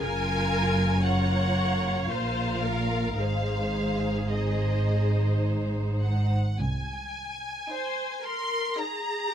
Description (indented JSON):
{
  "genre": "classical, slow romantic movement for string orchestra",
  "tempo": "51-59 BPM",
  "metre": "3/4",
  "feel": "rubato",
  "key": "unclear",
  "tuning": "A4 = 440 Hz",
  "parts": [
    { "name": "rich studio violin section", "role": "melody", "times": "0.0-9.3 s", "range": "Eb5 to C6", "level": "-32 LUFS", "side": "left 1 dB", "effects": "none" },
    { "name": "warm studio violin section", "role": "second line", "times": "0.0-9.3 s", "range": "Eb4 to Eb5", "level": "-34 LUFS", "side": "left 1 dB", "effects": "none" },
    { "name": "clear studio viola section", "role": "accompaniment", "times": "0.0-9.3 s", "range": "G4 to Db5", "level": "-32 LUFS", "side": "left 1 dB", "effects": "none" },
    { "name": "rich studio cello section", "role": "bass", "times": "0.0-7.5 s", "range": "C2 to Bb2", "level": "-28 LUFS", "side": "equal", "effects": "none" },
    { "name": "warm studio double bass section", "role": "bass", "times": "0.0-7.5 s", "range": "Gb1 to C2", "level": "-29 LUFS", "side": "right 2 dB", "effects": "none" }
  ],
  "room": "little or no reverb",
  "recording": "close, detailed microphones",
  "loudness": "-24 LUFS",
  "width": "side -9 dB against mid",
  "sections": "0.0-9.3 A section",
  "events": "none",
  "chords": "0.0 Gbmaj7; 3.2 Ab; 6.6 Ab/C"
}